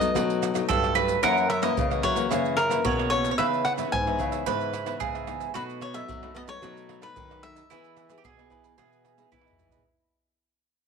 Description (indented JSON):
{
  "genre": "samba and choro",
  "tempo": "111 BPM",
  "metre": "4/4",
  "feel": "straight",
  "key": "E major",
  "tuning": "A4 = 440 Hz",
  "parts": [
    { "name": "cavaquinho", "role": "melody", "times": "0.0-9.3 s", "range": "A#4 to G#5", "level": "-28 LUFS", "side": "left 3 dB", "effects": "none" },
    { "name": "bowl-back mandolin", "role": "second line", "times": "0.0-9.8 s", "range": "E4 to C#5", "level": "-29 LUFS", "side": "right 10 dB", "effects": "none" },
    { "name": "nylon-string guitar", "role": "accompaniment", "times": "0.0-9.8 s", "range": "F#2 to G#4", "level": "-31 LUFS", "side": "left 12 dB", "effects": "none" },
    { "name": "nylon-string guitar", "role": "bass", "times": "0.0-9.8 s", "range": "F#2 to B3", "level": "-31 LUFS", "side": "equal", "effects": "none" },
    { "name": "maracas, pandeiro, surdo and tamborim", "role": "percussion", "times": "0.0-9.9 s", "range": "none", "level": "-34 LUFS", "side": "right 4 dB", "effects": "none" },
    { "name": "cavaquinho", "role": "accompaniment", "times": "1.2-9.9 s", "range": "D#4 to F#5", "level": "-34 LUFS", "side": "right 10 dB", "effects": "none" }
  ],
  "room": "moderate echo chamber reverb, RT60 1.6 s, small room ambience",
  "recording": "1960s-style stereo with parts hard left and right",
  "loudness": "-23 LUFS",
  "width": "side -6 dB against mid",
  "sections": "0.0-9.9 A section",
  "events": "fade-out 0.0-9.9; drum fill 9.3-9.9",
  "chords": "0.0 B7; 1.2 F#7; 3.4 C#m9; 5.5 B7; 7.7 Emaj7"
}